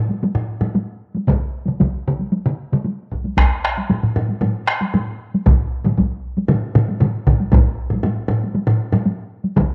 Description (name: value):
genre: japanese traditional, taiko drum ensemble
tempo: 116 BPM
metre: 4/4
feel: straight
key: none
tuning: none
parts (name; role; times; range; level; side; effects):
- taiko ensemble; percussion; 0.1-9.7 s; none; -23 LUFS; equal; none
- taiko ensemble; percussion; 0.3-9.1 s; none; -22 LUFS; equal; none
- taiko ensemble; percussion; 1.3-9.7 s; none; -21 LUFS; equal; none
- taiko ensemble; percussion; 1.3-9.7 s; none; -20 LUFS; equal; none
room: light reverb, small room reverb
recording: none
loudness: -19 LUFS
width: mono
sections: 0.0-9.7 A section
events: speeding up 0.0-9.7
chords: none